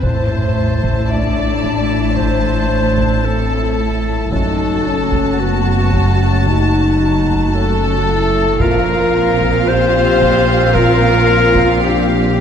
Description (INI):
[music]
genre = cinematic, suspense film score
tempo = 56 BPM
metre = 4/4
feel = straight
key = unclear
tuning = A4 = 440 Hz
[part]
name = clear studio violin section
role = melody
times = 0.0-12.4 s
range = F5 to A5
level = -23 LUFS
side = left 4 dB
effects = none
[part]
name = bright clarinet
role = second line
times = 0.0-12.4 s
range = F#4 to D5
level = -19 LUFS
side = left 2 dB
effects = none
[part]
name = rich studio violin section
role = second line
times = 0.0-12.4 s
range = F#4 to D5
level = -23 LUFS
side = left 3 dB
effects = none
[part]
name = clear studio viola section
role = accompaniment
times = 0.0-12.4 s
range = A3 to F#4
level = -23 LUFS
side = right 3 dB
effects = none
[part]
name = dark French horn section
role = sustained chords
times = 0.0-12.4 s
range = B3 to G4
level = -20 LUFS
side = left 2 dB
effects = none
[part]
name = rich studio double bass section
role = bass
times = 0.0-12.4 s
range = F#1 to Bb1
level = -21 LUFS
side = right 4 dB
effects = none
[part]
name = warm studio cello section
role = bass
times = 0.0-12.4 s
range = F#2 to Bb2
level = -20 LUFS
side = right 1 dB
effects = none
[part]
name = deep rumbling drone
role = drone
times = 0.0-12.4 s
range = F#1 to Bb1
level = -22 LUFS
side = equal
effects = built-in reverb
[part]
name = taiko ensemble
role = drums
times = 0.0-12.4 s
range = none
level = -23 LUFS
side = equal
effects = none
[part]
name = swell and sub drop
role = sound effects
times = 0.0-4.3 s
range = none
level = -25 LUFS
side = equal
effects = none
[part]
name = warm concert grand piano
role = texture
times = 1.1-8.6 s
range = C#4 to E5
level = -31 LUFS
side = left 2 dB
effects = none
[sound]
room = wet scoring stage reverb, RT60 2.1 s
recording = dark, warm production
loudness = -12 LUFS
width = side -8 dB against mid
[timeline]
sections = 0.0-12.4 A section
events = impact 0.0-4.3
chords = 0.0 Am; 4.3 F#m; 8.6 Bbsus2